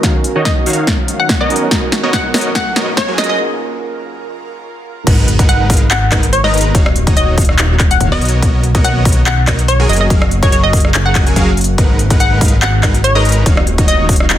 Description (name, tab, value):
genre	future bass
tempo	143 BPM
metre	4/4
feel	swing 54% on 16ths, half-time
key	B lydian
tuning	A4 = 439 Hz
part	felt-muted upright piano	accompaniment	0.0-5.1 s	C#4 to E#5	-24 LUFS	right 4 dB	sidechain pumping, dub echo
part	ethereal airy pad	sustained chords	0.0-14.4 s	B2 to E#5	-25 LUFS	equal	ensemble chorus, built-in reverb, sidechain pumping
part	supersaw stab	riff	0.0-14.4 s	D#3 to A#5	-19 LUFS	equal	vintage 12-bit sampler grit, sidechain pumping, low-pass filter
part	big-room dance drum kit	drums	0.0-14.4 s	crash cymbal, handclaps, hi-hat, rim click, snare drum	-17 LUFS	equal	soft clipping on snare
part	electronic kick drum	drums	0.0-14.2 s	none	-13 LUFS	equal	none
part	riser and sub drop	sound effects	0.3-6.7 s	none	-26 LUFS	equal	none
part	hollow square pluck	melody	0.5-14.2 s	C#5 to F#5	-18 LUFS	left 1 dB	wide subtle chorus, sidechain pumping, dub echo
part	fat analog bass	bass	5.1-14.4 s	D#1 to B1	-15 LUFS	equal	sidechain pumping
room	light reverb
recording	dense, heavily limited modern master, high-pass filter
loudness	-10 LUFS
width	side -12 dB against mid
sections	0.0-5.1 A section; 5.1-14.4 B section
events	build-up 0.0-5.1; drum fill 0.0-3.4; break 3.4-5.1; drop 5.1-14.4; impact 5.1-6.7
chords	0.0 D#m9; 1.5 Bmaj7; 3.2 F#maj7; 5.1 G#m9; 6.7 D#m9; 8.2 Bmaj7; 9.9 F#maj7; 11.8 G#m9; 13.5 D#m9